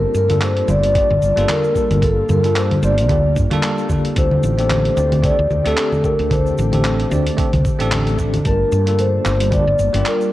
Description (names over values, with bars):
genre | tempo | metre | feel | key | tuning
sunset chillout | 112 BPM | 4/4 | swing 57% on 16ths | G minor | A4 = 438 Hz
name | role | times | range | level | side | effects
vibraphone with soft mallets | melody | 0.0-10.3 s | A4 to D5 | -19 LUFS | left 1 dB | none
bell-like tine electric piano | accompaniment | 0.0-10.3 s | G3 to A5 | -24 LUFS | moving between left 3 dB and right 3 dB | medium stereo tremolo, auto-pan
ethereal airy pad | sustained chords | 0.0-10.3 s | D3 to A5 | -27 LUFS | right 1 dB | ensemble chorus, built-in reverb
woody fretless electric bass | bass | 0.0-10.0 s | G1 to G2 | -19 LUFS | equal | none
dusty soul sampler-style drum kit | drums | 0.1-10.3 s | congas, handclaps, hi-hat, shaker | -21 LUFS | equal | none
electronic kick drum | drums | 0.9-9.6 s | none | -21 LUFS | equal | none
room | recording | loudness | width
light reverb | worn, warbling old tape, cassette tape, warbly pitch drift | -14 LUFS | side -15 dB against mid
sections
0.0-8.5 A section; 8.5-10.3 A section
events
none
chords
0.0 Gm9; 4.2 D7sus4; 8.5 Gm9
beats
0.42 0.95 1.49 | 2.02 2.56 3.09 3.63 | 4.17 4.70 5.24 5.77 | 6.31 6.84 7.38 7.92 | 8.45 8.99 9.52 10.06